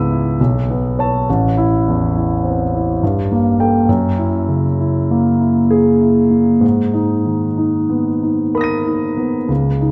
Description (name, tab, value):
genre	classical, impressionist solo piano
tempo	62-71 BPM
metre	3/4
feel	rubato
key	unclear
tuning	A4 = 441 Hz
part	clear concert grand piano	solo	0.0-9.9 s	A1 to D#7	-16 LUFS	equal	none
room	wet recital hall reverb, RT60 1.6 s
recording	none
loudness	-16 LUFS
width	mono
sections	0.0-9.9 A section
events	none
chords	0.4 Bsus2; 1.3 Am; 3.0 Gmadd9; 3.9 F#9; 6.6 G#madd9